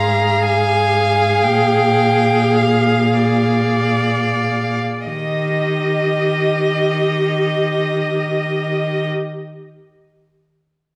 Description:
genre	classical, slow romantic movement for string quartet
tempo	free time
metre	none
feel	none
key	Eb major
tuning	A4 = 440 Hz
part	rich violin	melody	0.0-9.1 s	D5 to Bb5	-24 LUFS	equal	none
part	rich violin	second line	0.0-9.1 s	Eb5 to F5	-24 LUFS	equal	none
part	rich viola	accompaniment	0.0-9.1 s	G4 to Ab4	-22 LUFS	equal	none
part	rich cello	bass	0.0-9.1 s	Ab2 to Eb3	-22 LUFS	equal	none
room	wet recital hall reverb, RT60 1.6 s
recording	none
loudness	-17 LUFS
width	mono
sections	0.0-5.1 A section; 5.1-11.0 B section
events	slowing down 0.0-5.1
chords	0.0 Fm/Ab; 1.4 Bb7; 5.1 Eb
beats	free time

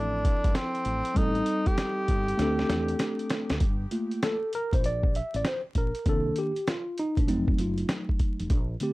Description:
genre	hip hop, jazz-hop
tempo	98 BPM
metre	4/4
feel	swing 64% on 16ths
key	unclear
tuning	A4 = 438 Hz
part	breathy tenor saxophone	melody	0.0-3.3 s	C4 to G4	-31 LUFS	equal	tape echo
part	mellow tine electric piano	accompaniment	0.0-8.9 s	D3 to E5	-29 LUFS	equal	medium stereo tremolo
part	woody fretless electric bass	bass	0.0-8.7 s	F1 to E2	-32 LUFS	equal	tube saturation, ensemble chorus
part	lo-fi sampler-style drum kit	drums	0.2-8.9 s	hi-hat, kick drum, snare drum	-27 LUFS	equal	none
room	light reverb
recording	dry, gritty hardware recording, transformer saturation, vinyl crackle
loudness	-25 LUFS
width	side -20 dB against mid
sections	0.0-3.6 A section; 3.6-8.9 B section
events	drum fill 2.4-3.6; tine electric piano solo 3.6-8.9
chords	0.0 Fmaj7; 1.2 Am7b5; 2.4 D5; 3.6 Gm9 (rootless); 6.1 Cm7; 7.3 F7b9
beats	0.55 | 1.16 1.77 2.39 3.00 | 3.61 4.22 4.83 5.45 | 6.06 6.67 7.28 7.90 | 8.51

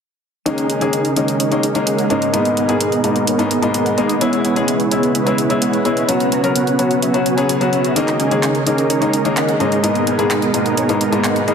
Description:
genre	EDM, festival progressive house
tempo	128 BPM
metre	4/4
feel	straight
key	G# minor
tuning	A4 = 438 Hz
part	clear concert grand piano	accompaniment	0.5-11.5 s	G#2 to A#4	-18 LUFS	left 4 dB	dub echo
part	lush unison pad	sustained chords	1.0-11.5 s	B2 to B4	-22 LUFS	right 3 dB	chorus
part	dense compressed supersaw	riff	0.5-11.5 s	B3 to A#5	-18 LUFS	right 2 dB	cassette tape, low-pass filter, dub echo
part	big-room dance drum kit	drums	0.5-11.5 s	handclaps, hi-hat	-23 LUFS	right 1 dB	none
room	moderate lush hall reverb, RT60 1.7 s, digital ambience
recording	heavily compressed radio sound, multiband compression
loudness	-14 LUFS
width	side -6 dB against mid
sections	0.5-11.5 A section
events	none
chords	0.5 D#7sus4; 2.3 G#madd9; 4.2 E6; 6.1 F#sus4; 8.0 D#7sus4; 9.8 G#madd9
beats	| 0.46 0.93 1.40 1.87 | 2.34 2.81 3.27 3.74 | 4.21 4.68 5.15 5.62 | 6.09 6.56 7.02 7.49 | 7.96 8.43 8.90 9.37 | 9.84 10.31 10.77 11.24

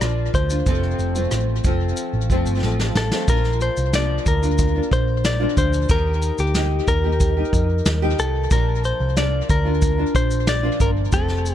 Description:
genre	acoustic pop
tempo	92 BPM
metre	4/4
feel	straight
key	Bb major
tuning	A4 = 438 Hz
part	direct-recorded clean electric guitar	melody	0.0-11.5 s	G4 to D5	-25 LUFS	left 3 dB	tape echo
part	nylon-string guitar	accompaniment	0.0-11.5 s	F2 to G4	-25 LUFS	equal	double-tracked left and right, tape echo
part	hollow-body short-scale picked electric bass	bass	0.0-11.5 s	F1 to F2	-21 LUFS	equal	none
part	vintage brush drum kit	drums	0.0-11.5 s	kick drum, rim click, shaker, snare drum	-22 LUFS	equal	none
room	small room ambience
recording	echo-heavy mix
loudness	-17 LUFS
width	side -11 dB against mid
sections	0.0-3.3 A section; 3.3-11.5 B section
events	drum fill 2.6-3.3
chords	0.0 Bb; 0.7 F; 3.3 Bb; 5.9 Eb; 8.5 Bb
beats	0.01 | 0.67 1.32 1.97 2.63 | 3.28 3.93 4.59 5.24 | 5.89 6.55 7.20 7.86 | 8.51 9.17 9.82 10.47 | 11.13

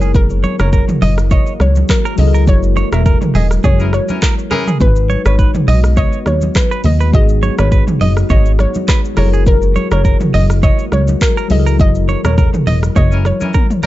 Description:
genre	afrobeats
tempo	103 BPM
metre	4/4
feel	swing 55% on 16ths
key	unclear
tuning	A4 = 440 Hz
part	bell-like tine electric piano	accompaniment	0.0-13.9 s	F#3 to B4	-23 LUFS	left 5 dB	phaser
part	deep dark ambient pad	sustained chords	0.0-13.9 s	D#3 to F#4	-25 LUFS	left 2 dB	chorus, built-in reverb
part	direct-recorded clean electric guitar	riff	0.0-13.9 s	G#4 to D#5	-23 LUFS	right 6 dB	none
part	plucky analog bass	bass	0.0-13.3 s	E1 to D#2	-13 LUFS	equal	none
part	deep house drum kit	drums	0.0-13.9 s	handclaps, hi-hat, kick drum, rim click, shaker, toms	-14 LUFS	equal	none
part	congas	percussion	0.1-13.9 s	none	-23 LUFS	right 2 dB	none
part	soft round pluck	melody	0.2-13.4 s	A#4 to E5	-22 LUFS	left 1 dB	chorus, ping-pong delay
part	clear horn section	second line	3.8-4.7, 13.1-13.9 s	E3 to A#4	-23 LUFS	left 4 dB	none
room	little or no reverb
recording	dark, warm production, nothing above 7.8 kHz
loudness	-10 LUFS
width	side -15 dB against mid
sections	0.0-13.9 A section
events	band accent 2.5-4.8, 11.8-13.9; drum fill 13.5-13.9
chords	0.0 F#9; 4.8 G#m7; 9.2 F#9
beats	| 0.14 0.73 1.31 1.89 | 2.48 3.06 3.64 4.22 | 4.80 5.39 5.97 6.55 | 7.13 7.72 8.30 8.88 | 9.46 10.05 10.63 11.21 | 11.79 12.38 12.96 13.54

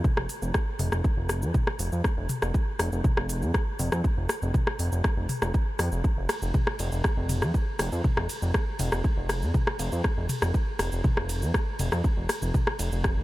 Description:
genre	melodic techno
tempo	120 BPM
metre	4/4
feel	straight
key	unclear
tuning	A4 = 436 Hz
part	electronic kick drum	drums	0.0-13.1 s	none	-26 LUFS	equal	small room ambience
part	house drum kit	drums	0.0-13.1 s	hi-hat, ride cymbal, rim click, shaker, toms	-30 LUFS	left 1 dB	small room ambience
part	fat analog bass	bass	0.2-13.2 s	F1 to F2	-28 LUFS	equal	sidechain pumping
room	light reverb, digital ambience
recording	none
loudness	-24 LUFS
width	side -17 dB against mid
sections	0.0-13.2 A section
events	none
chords	none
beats	| 0.04 0.54 1.04 1.54 | 2.04 2.54 3.04 3.54 | 4.04 4.54 5.04 5.54 | 6.04 6.54 7.04 7.54 | 8.04 8.54 9.04 9.54 | 10.04 10.54 11.04 11.54 | 12.04 12.54 13.04

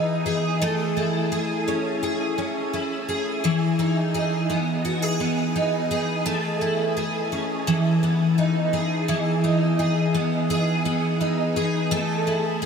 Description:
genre	dream pop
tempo	85 BPM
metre	4/4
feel	straight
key	E major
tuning	A4 = 439 Hz
part	picked twelve-string acoustic guitar	solo	0.0-12.7 s	E3 to G#4	-21 LUFS	equal	ensemble chorus
room	wet shimmer reverb, RT60 7.7 s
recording	none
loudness	-21 LUFS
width	side -6 dB against mid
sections	0.0-9.1 A section; 9.1-12.7 A section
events	none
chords	0.0 Emaj7; 0.6 Amaj7; 3.4 Emaj7; 6.3 Amaj7; 7.7 Emaj7; 11.9 Amaj7(no3)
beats	| 0.61 1.32 2.02 2.73 | 3.44 4.14 4.85 5.55 | 6.26 6.97 7.67 8.38 | 9.08 9.79 10.49 11.20 | 11.91 12.61

